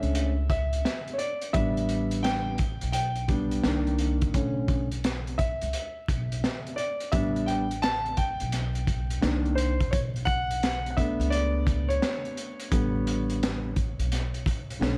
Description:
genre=hip hop, jazz-hop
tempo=86 BPM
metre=4/4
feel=swing 65% on 16ths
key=B minor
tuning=A4 = 436 Hz
part: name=warm concert grand piano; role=accompaniment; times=0.0-15.0 s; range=D3 to A5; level=-31 LUFS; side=equal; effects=none
part: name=upright bass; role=bass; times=0.0-15.0 s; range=A1 to C#2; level=-32 LUFS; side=equal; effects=none
part: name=crunchy breakbeat drum kit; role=drums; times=0.0-15.0 s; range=hi-hat, kick drum, snare drum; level=-32 LUFS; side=equal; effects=none
room=small room ambience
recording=vinyl crackle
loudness=-28 LUFS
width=mono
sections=0.0-15.0 A section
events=grand piano solo 0.0-15.0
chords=0.0 Bm9 (rootless); 1.6 A9sus4; 3.6 Cm9; 4.3 Bm9; 7.1 A9sus4; 9.2 Cm9; 9.9 Bm9; 12.7 A9sus4

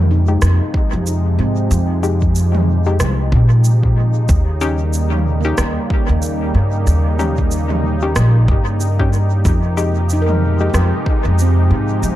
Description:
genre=ambient dub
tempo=93 BPM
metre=4/4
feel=swing 59% on 16ths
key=F minor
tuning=A4 = 439 Hz
part: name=warm analog pad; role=sustained chords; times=0.0-12.2 s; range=C3 to G4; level=-23 LUFS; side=equal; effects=chorus
part: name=handpan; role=arpeggios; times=0.0-12.2 s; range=Bb3 to G5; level=-26 LUFS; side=right 5 dB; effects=analog delay
part: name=upright bass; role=bass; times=0.0-12.2 s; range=Bb1 to Bb2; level=-14 LUFS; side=equal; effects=none
part: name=filtered dub chord stab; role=stabs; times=0.3-10.8 s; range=Ab3 to G4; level=-25 LUFS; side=left 4 dB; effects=chorus, dub echo
part: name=organic electronic drum kit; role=drums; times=0.4-12.2 s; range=rim click, shaker, toms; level=-25 LUFS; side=right 1 dB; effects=overdrive, dub echo
part: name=electronic kick drum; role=drums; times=0.7-11.2 s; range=none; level=-17 LUFS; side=equal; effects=overdrive
room=little or no reverb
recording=echo-heavy mix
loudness=-13 LUFS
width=side -14 dB against mid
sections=0.0-12.2 A section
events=none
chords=0.0 Fm9; 4.3 Eb7; 9.5 Fm9

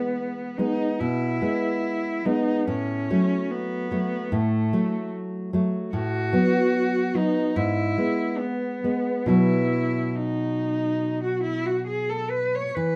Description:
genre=romantic duo for cello and classical guitar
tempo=64-75 BPM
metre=4/4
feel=rubato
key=unclear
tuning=A4 = 440 Hz
part: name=rich cello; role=melody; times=0.0-13.0 s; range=A3 to C#5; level=-29 LUFS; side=equal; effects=none
part: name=nylon-string guitar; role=accompaniment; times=0.0-13.0 s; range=G#2 to B3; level=-27 LUFS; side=equal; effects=none
room=wet studio reverb, RT60 0.6 s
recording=rough home demo mix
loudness=-25 LUFS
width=mono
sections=0.0-13.0 A section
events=none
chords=0.0 E; 2.7 F#m/A; 5.9 B5/A; 7.6 E/G#; 9.3 B

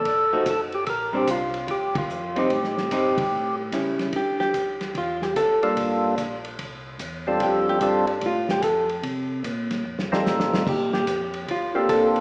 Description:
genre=soul jazz organ trio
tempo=147 BPM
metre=4/4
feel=swing 65% on 8ths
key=D minor from 4.1 s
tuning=A4 = 440 Hz
part: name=percussive tonewheel organ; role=melody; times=0.0-12.2 s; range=G3 to Bb4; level=-23 LUFS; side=equal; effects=slow rotary speaker, overdrive
part: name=mellow tonewheel organ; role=bass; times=0.0-12.2 s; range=F1 to D3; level=-33 LUFS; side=equal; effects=stopped rotary speaker
part: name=warm soul drum kit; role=drums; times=0.1-12.2 s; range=crash cymbal, hi-hat, kick drum, ride cymbal, snare drum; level=-31 LUFS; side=equal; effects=none
part: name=archtop guitar, miked and amplified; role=accompaniment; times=0.3-12.1 s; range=F3 to A4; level=-24 LUFS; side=equal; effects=none
room=wet recital hall reverb, RT60 1.6 s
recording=recorded in a church or concert hall, small speaker sound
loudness=-21 LUFS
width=side -37 dB against mid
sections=0.0-4.1 A section; 4.1-12.2 B section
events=band accent 1.9; hollow-body jazz guitar solo 4.1-12.2; drum fill 9.9-10.7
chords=0.1 F7b9; 0.9 Bb69; 2.5 Am7b5; 3.3 A7; 4.1 Dm; 5.8 Gm7; 6.6 C; 7.4 F6; 9.0 Bbsus2; 9.9 F7; 10.7 Bbmaj7

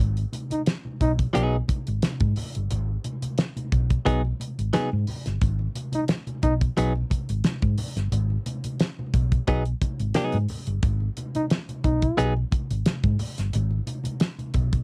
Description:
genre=funk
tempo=89 BPM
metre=4/4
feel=straight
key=G# minor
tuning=A4 = 440 Hz
part: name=hollow-body short-scale fingered electric bass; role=bass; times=0.0-14.8 s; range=G1 to G#2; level=-27 LUFS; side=equal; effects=none
part: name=damped 70s drum kit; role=drums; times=0.2-14.8 s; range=hi-hat, kick drum, snare drum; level=-27 LUFS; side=equal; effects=cassette tape
part: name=congas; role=percussion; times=0.3-14.7 s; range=none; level=-37 LUFS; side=equal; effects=none
part: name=dark trombone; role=second line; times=0.5-1.1, 5.9-6.5, 11.4-12.3 s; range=D#4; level=-27 LUFS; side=equal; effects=cassette tape
part: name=direct-recorded clean electric guitar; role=accompaniment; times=1.3-12.3 s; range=F#3 to G#4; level=-26 LUFS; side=equal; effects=cassette tape
room=light reverb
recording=home recording on cassette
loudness=-25 LUFS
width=mono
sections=0.0-14.8 A section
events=none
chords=0.0 G#m

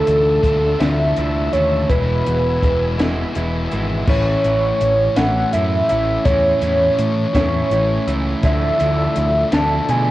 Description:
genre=indie rock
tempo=55 BPM (dotted quarters)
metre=6/8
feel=straight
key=A major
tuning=A4 = 440 Hz
part: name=pulse-width lead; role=melody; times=0.0-10.1 s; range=A4 to A5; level=-18 LUFS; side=equal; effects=chorus
part: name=tonewheel organ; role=sustained chords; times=0.0-4.1, 8.4-10.1 s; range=F3 to E6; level=-30 LUFS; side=equal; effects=chorus vibrato, slow rotary speaker, cassette tape
part: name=electric guitar through a small old amp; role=riff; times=0.0-10.1 s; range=E3 to E4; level=-26 LUFS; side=right 5 dB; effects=wide subtle chorus, cassette tape, tape echo
part: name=thick fuzz guitar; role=riff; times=0.0-10.1 s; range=E2 to F4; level=-24 LUFS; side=left 3 dB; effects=distortion, cassette tape
part: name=growling picked electric bass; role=bass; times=0.1-10.1 s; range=E1 to B2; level=-21 LUFS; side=equal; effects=overdrive
part: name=compact cocktail drum kit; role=drums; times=0.1-10.1 s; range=crash cymbal, hi-hat, kick drum, snare drum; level=-20 LUFS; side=equal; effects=cassette tape
room=light reverb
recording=home recording on cassette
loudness=-15 LUFS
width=side -16 dB against mid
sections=0.0-4.1 A section; 4.1-10.1 B section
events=none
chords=0.0 Dmadd9; 1.9 E; 4.1 A; 8.4 Dmadd9

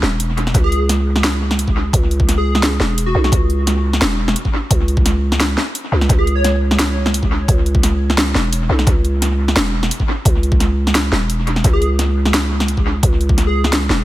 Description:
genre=half-time drum and bass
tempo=173 BPM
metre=4/4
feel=half-time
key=C# minor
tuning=A4 = 439 Hz
part: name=growling 808-style bass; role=bass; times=0.0-14.0 s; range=D#1 to C#2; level=-16 LUFS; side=equal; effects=none
part: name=drum and bass drum kit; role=drums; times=0.0-14.0 s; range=hi-hat, snare drum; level=-19 LUFS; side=equal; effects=overdrive, dub echo
part: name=electronic kick drum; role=drums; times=0.5-13.4 s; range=none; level=-16 LUFS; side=equal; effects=overdrive
part: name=plucky unison lead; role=melody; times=0.6-3.4, 6.2-6.6, 11.7-13.8 s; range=F#4 to C#5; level=-25 LUFS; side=equal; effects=lush chorus, dub echo
room=little or no reverb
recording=echo-heavy mix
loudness=-13 LUFS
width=side -15 dB against mid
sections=0.0-14.0 A section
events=none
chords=0.0 C#5

